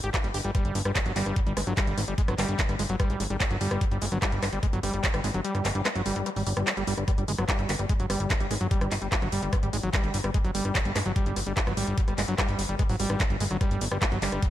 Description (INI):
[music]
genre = psychedelic trance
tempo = 147 BPM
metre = 4/4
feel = straight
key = unclear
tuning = A4 = 440 Hz
[part]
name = overdriven acid bass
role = riff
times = 0.0-14.5 s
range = F#3 to G4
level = -31 LUFS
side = equal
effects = auto-pan, sidechain pumping, ping-pong delay
[part]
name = fat analog bass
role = bass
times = 0.0-14.4 s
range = G1 to Ab1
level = -30 LUFS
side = equal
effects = none
[part]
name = drum and bass drum kit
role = drums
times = 0.0-14.5 s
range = handclaps, hi-hat, rim click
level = -31 LUFS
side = equal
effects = none
[part]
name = electronic kick drum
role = drums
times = 0.1-14.5 s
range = none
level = -26 LUFS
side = equal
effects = none
[sound]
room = light reverb, digital ambience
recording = none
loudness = -24 LUFS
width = side -13 dB against mid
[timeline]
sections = 0.0-14.5 A section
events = kick drops out 5.4-7.1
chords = 0.0 G5